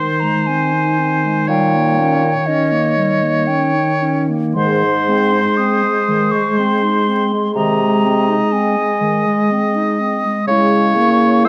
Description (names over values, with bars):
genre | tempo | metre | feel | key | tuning
classical, slow romantic movement for wind quintet | 60 BPM | 3/4 | rubato | Ab major | A4 = 440 Hz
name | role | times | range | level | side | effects
hollow concert flute | melody | 0.0-11.5 s | Eb5 to Fb6 | -22 LUFS | equal | none
bright oboe | second line | 0.0-11.5 s | C5 to Eb5 | -22 LUFS | equal | none
dark French horn | accompaniment | 0.0-11.5 s | Eb3 to Bb3 | -20 LUFS | equal | none
warm clarinet | accompaniment | 0.0-11.5 s | Eb3 to Fb4 | -24 LUFS | equal | none
mellow bassoon | bass | 1.5-11.5 s | Ab2 to Fb3 | -22 LUFS | equal | none
room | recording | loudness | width
moderate recital hall reverb, RT60 1.5 s | close, detailed microphones, vinyl crackle | -16 LUFS | mono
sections
0.0-11.5 A section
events
none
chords
0.0 Ab; 1.5 Eb7/Bb; 4.6 Ab; 7.6 Ab/C; 10.5 Dbm